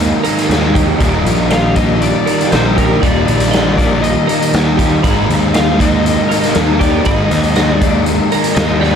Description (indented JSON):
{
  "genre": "rock, shoegaze and dream pop",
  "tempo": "119 BPM",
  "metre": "4/4",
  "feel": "straight",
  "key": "unclear",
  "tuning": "A4 = 437 Hz",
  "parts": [
    { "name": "twelve-string electric guitar", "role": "arpeggios", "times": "0.0-9.0 s", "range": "G4 to Cb6", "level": "-23 LUFS", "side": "right 10 dB", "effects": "lush chorus, slapback echo" },
    { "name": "crunchy overdriven guitar", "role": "riff", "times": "0.0-9.0 s", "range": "Eb2 to Eb4", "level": "-17 LUFS", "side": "right 10 dB", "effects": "reverse reverb" },
    { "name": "overdriven semi-hollow guitar", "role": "riff", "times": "0.0-9.0 s", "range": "Eb2 to Eb4", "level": "-17 LUFS", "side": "left 12 dB", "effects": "wide subtle chorus" },
    { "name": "fuzz picked electric bass", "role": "bass", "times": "0.0-9.0 s", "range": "Eb1 to Eb2", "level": "-16 LUFS", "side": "equal", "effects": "overdrive" },
    { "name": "raw garage drum kit", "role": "drums", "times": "0.2-8.9 s", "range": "hi-hat, kick drum, snare drum", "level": "-17 LUFS", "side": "equal", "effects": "none" },
    { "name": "lead guitar through a small cranked amp", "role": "melody", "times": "1.5-9.0 s", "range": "Bb4 to F5", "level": "-20 LUFS", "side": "left 3 dB", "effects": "overdrive, slapback echo" }
  ],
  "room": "light reverb, studio ambience",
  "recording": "none",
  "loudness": "-10 LUFS",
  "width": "side -7 dB against mid",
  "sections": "0.0-9.0 A section",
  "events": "none",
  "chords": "0.0 Absus2; 1.0 Ebmaj7; 5.0 Abmadd9"
}